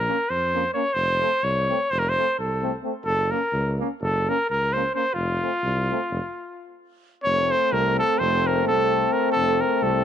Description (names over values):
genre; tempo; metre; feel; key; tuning
balkan folk, Balkan brass band; 257 BPM (eighths); 9/8; straight; unclear; A4 = 441 Hz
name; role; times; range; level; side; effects
warm trumpet; melody; 0.0-10.0 s; F4 to Db5; -22 LUFS; equal; none
mellow tuba; bass; 0.0-10.0 s; F1 to F2; -28 LUFS; equal; none
bright trombone; accompaniment; 0.1-10.0 s; A3 to Bb3; -30 LUFS; right 14 dB; none
clear euphonium; accompaniment; 0.1-10.0 s; C4 to Db4; -28 LUFS; left 12 dB; none
room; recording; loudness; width
light reverb, small room ambience; 1960s-style stereo with parts hard left and right; -20 LUFS; side -9 dB against mid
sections
0.0-7.2 A section; 7.2-10.0 B section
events
stop 6.2-7.2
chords
0.0 Bbm; 0.9 F; 3.0 Gb; 5.1 F